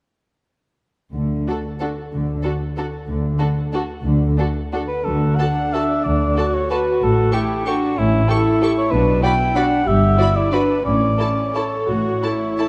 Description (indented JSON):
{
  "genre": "classical, orchestral ballroom waltz",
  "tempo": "165-204 BPM",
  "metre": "3/4",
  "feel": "rubato",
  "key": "D major",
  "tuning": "A4 = 440 Hz",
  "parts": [
    { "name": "dark studio cello section", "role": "bass", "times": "1.1-12.2 s", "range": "G2 to D3", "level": "-25 LUFS", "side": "equal", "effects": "none" },
    { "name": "rich studio double bass section", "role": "bass", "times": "1.1-12.2 s", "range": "G1 to D2", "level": "-26 LUFS", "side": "equal", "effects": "none" },
    { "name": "warm studio violin section", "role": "melody", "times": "1.5-12.7 s", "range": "A4 to C#6", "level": "-35 LUFS", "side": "equal", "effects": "none" },
    { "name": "dark studio violin section", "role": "second line", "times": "1.5-12.7 s", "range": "E4 to D5", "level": "-30 LUFS", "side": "equal", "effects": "none" },
    { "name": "warm studio viola section", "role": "accompaniment", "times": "1.5-12.7 s", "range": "C#4 to A4", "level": "-25 LUFS", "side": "equal", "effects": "none" },
    { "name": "mellow cor anglais", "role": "second line", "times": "4.9-12.7 s", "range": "E4 to G5", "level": "-23 LUFS", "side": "equal", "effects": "none" }
  ],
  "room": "moderate scoring stage reverb, RT60 2.0 s",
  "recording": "dark, warm production",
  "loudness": "-19 LUFS",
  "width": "mono",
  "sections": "1.2-5.1 A section; 5.1-12.7 B section",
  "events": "none",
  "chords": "1.2 N.C.; 5.1 D; 7.0 A7; 8.9 Bm; 9.9 G; 10.9 A",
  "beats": "| 1.15 1.48 1.82 | 2.13 2.44 2.77 | 3.08 3.40 3.73 | 4.05 4.37 4.72 | 5.06 5.39 5.73 | 6.05 6.38 6.71 | 7.02 7.34 7.67 | 7.98 8.29 8.62 | 8.93 9.24 9.57 | 9.88 10.19 10.53 | 10.85 11.19 11.55 | 11.88 12.22 12.58"
}